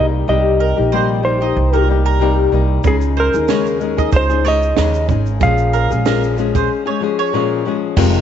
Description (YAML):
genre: acoustic pop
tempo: 94 BPM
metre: 4/4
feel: swing 55% on 16ths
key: unclear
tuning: A4 = 441 Hz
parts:
  - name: clean lap steel guitar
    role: melody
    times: 0.0-7.3 s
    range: Ab4 to F5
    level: -19 LUFS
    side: right 2 dB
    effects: none
  - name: flamenco guitar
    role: accompaniment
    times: 0.0-8.2 s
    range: F2 to Ab4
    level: -18 LUFS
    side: left 9 dB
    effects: none
  - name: upright bass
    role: bass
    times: 0.0-8.2 s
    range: F1 to Eb2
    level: -17 LUFS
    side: right 2 dB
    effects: none
  - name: mandolin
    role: arpeggios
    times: 0.6-7.5 s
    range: Bb4 to Eb5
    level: -23 LUFS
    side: right 10 dB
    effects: none
  - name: compact cocktail drum kit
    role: drums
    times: 2.8-8.2 s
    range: crash cymbal, kick drum, shaker, snare drum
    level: -19 LUFS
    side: right 6 dB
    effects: none
room: light reverb, small room ambience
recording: 1960s-style stereo with parts hard left and right, nothing above 7.9 kHz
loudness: -13 LUFS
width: side -9 dB against mid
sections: 0.0-8.0 A section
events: break 6.7-8.0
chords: 0.0 Cm7; 2.8 Dbsus2; 5.4 Bbm7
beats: | 0.28 0.92 1.56 2.21 | 2.85 3.49 4.13 4.77 | 5.41 6.05 6.69 7.33 | 7.97